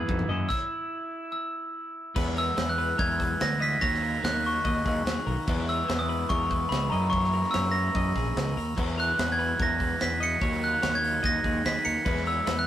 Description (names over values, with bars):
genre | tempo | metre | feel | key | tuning
math rock and midwest emo | 146 BPM | 4/4 | straight | E lydian | A4 = 440 Hz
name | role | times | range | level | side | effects
glockenspiel with soft plastic mallets | melody | 0.0-12.7 s | A#5 to C#7 | -28 LUFS | right 1 dB | none
twelve-string electric guitar | accompaniment | 0.0-2.2 s | E2 to G#4 | -37 LUFS | right 2 dB | none
clean electric guitar | arpeggios | 0.0-12.7 s | G#4 to D#5 | -38 LUFS | left 6 dB | none
crunchy overdriven guitar | riff | 0.0-12.7 s | F#2 to E4 | -36 LUFS | equal | none
growling fingered electric bass | bass | 0.1-12.7 s | A#1 to F#2 | -30 LUFS | equal | overdrive
crisp fusion drum kit | drums | 0.1-12.6 s | crash cymbal, hi-hat, kick drum, snare drum, toms | -32 LUFS | equal | none
room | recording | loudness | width
light reverb | rough rehearsal-room recording, tube saturation | -24 LUFS | side -11 dB against mid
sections
0.0-2.2 A section; 2.2-12.7 B section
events
stop 0.5-2.2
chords
0.3 F#7; 1.3 N.C.; 2.2 Emaj7; 3.8 D#m7; 5.5 E; 6.9 F#7; 8.8 Emaj7; 10.4 D#m7; 12.1 E